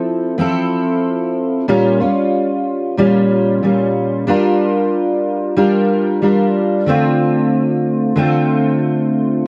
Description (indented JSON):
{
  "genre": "indie pop",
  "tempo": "93 BPM",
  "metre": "4/4",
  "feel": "straight",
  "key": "unclear",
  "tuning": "A4 = 443 Hz",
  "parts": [
    { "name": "fingerpicked steel-string acoustic guitar", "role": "solo", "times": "0.0-9.5 s", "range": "Bb2 to Bb4", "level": "-16 LUFS", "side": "equal", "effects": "analog chorus, warbly pitch drift" }
  ],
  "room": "moderate studio reverb, RT60 0.6 s",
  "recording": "worn, warbling old tape, cassette tape, warbly pitch drift",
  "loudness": "-16 LUFS",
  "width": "mono",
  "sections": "0.0-1.7 A section; 1.7-9.5 B section",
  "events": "none",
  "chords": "0.0 Fmaj7; 1.7 Bbm6; 4.3 Gm7; 6.9 Dm7"
}